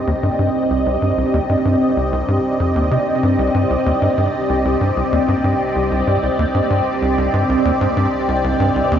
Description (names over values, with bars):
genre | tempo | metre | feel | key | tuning
ambient, sequencer-driven space music | 95 BPM | 4/4 | straight | C minor | A4 = 440 Hz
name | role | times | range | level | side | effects
lush unison pad | sustained chords | 0.0-9.0 s | C4 to Eb5 | -17 LUFS | equal | chorus, phaser, shimmer reverb
analog drone | bass | 0.6-9.0 s | C2 | -37 LUFS | equal | none
tight sequencer bass | riff | 0.1-9.0 s | C2 to C3 | -19 LUFS | equal | lush chorus, tape echo
room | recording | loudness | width
wet plate reverb, RT60 2.8 s | dreamy mix soaked in reverb, nothing above 7.6 kHz | -15 LUFS | side -9 dB against mid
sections
0.0-9.0 A section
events
none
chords
0.0 Cm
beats
0.23 | 0.86 1.49 2.12 2.76 | 3.39 4.02 4.65 5.28 | 5.91 6.55 7.18 7.81 | 8.44